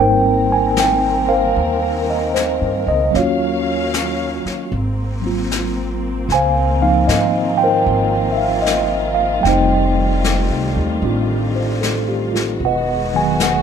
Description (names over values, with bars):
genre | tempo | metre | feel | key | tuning
jazz ballad | 76 BPM | 4/4 | swing 66% on 8ths | Ab major | A4 = 440 Hz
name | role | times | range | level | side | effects
mellow tine electric piano | accompaniment | 0.0-13.6 s | D#3 to Ab5 | -16 LUFS | right 1 dB | medium stereo tremolo
dark studio string section | sustained chords | 0.0-13.6 s | Eb3 to F5 | -25 LUFS | left 2 dB | none
upright bass | bass | 0.0-13.6 s | E1 to Ab2 | -22 LUFS | equal | none
jazz brush drum kit | drums | 0.8-13.6 s | brushed snare drum, hi-hat, snare drum | -25 LUFS | left 4 dB | none
room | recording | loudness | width
light reverb | none | -15 LUFS | side -7 dB against mid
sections
0.0-13.6 A section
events
none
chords
0.0 Abmaj9; 3.1 Ebm9; 4.7 Ab13; 6.3 Dbmaj13; 9.4 F9; 12.6 Emaj9